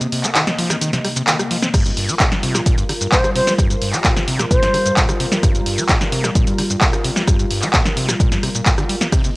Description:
acid house; 130 BPM; 4/4; straight; G minor; A4 = 438 Hz
warm analog pad; sustained chords; 0.0-9.4 s; C3 to Eb5; -25 LUFS; left 1 dB; chorus, sidechain pumping, cassette tape
overdriven acid bass; riff; 0.0-9.3 s; G2 to C4; -23 LUFS; equal; cassette tape
punchy analog drum machine; drums; 0.0-9.3 s; crash cymbal, handclaps, hi-hat, ride cymbal, rim click, shaker, snare drum; -19 LUFS; equal; cassette tape
electronic kick drum; drums; 1.7-9.2 s; -17 LUFS; equal; cassette tape
mellow hollow silver concert flute; melody; 3.1-5.0 s; C5; -20 LUFS; equal; cassette tape, tape echo
light reverb; home recording on cassette; -14 LUFS; side -23 dB against mid
0.0-9.4 A section
break 0.0-1.7
0.0 Cm7; 1.7 Gm7

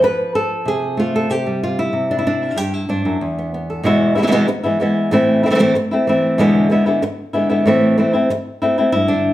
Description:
flamenco; 189 BPM; 4/4; straight; E phrygian dominant; A4 = 438 Hz
flamenco guitar; solo; 0.0-9.3 s; E2 to B4; -14 LUFS; equal
wet large studio reverb, RT60 0.9 s; heard from further back in the room; -14 LUFS; side -14 dB against mid
0.0-3.8 A section; 3.8-8.9 B section
0.0 F; 1.3 Cadd9; 2.6 G5; 3.2 Esus4; 3.8 E; 5.1 Am; 6.4 E7; 7.7 Am

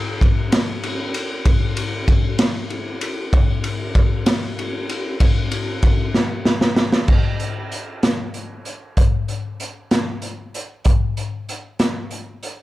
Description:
rock; 64 BPM (dotted quarters); 6/8; straight
raw garage drum kit; drums; 0.2-12.6 s; crash cymbal, hi-hat, kick drum, ride cymbal, snare drum; -18 LUFS; equal
light reverb; dark, warm production; -17 LUFS; side -16 dB against mid
0.0-7.1 A section; 7.1-12.6 B section
drum fill 6.1-7.1

